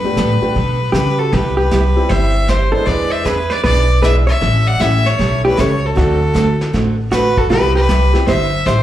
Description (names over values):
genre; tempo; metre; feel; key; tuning
country, western swing; 156 BPM; 4/4; swing 65% on 8ths; unclear; A4 = 441 Hz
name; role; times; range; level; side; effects
clear fiddle; melody; 0.0-8.8 s; A4 to F#5; -18 LUFS; left 1 dB; slapback echo
clear upright piano; accompaniment; 0.0-8.3 s; F#3 to Ab4; -22 LUFS; left 2 dB; slapback echo
upright bass; bass; 0.0-8.8 s; G1 to C#3; -16 LUFS; equal; none
picked steel-string acoustic guitar; accompaniment; 0.2-8.8 s; C3 to A4; -22 LUFS; right 4 dB; slapback echo
vintage brush drum kit; drums; 0.2-8.8 s; brushed snare drum, hi-hat, kick drum, snare drum; -24 LUFS; equal; none
hollow-body jazz guitar; second line; 0.9-8.8 s; F#4 to D5; -20 LUFS; right 2 dB; slapback echo
room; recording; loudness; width
light reverb, small room ambience; live gig heard through the venue's PA, club reverb; -12 LUFS; side -12 dB against mid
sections
0.0-1.3 A section; 1.3-8.8 B section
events
none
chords
0.0 Gadd9; 1.3 Cmaj7; 2.9 E7; 4.4 A7; 6.0 D7; 7.5 Cmaj7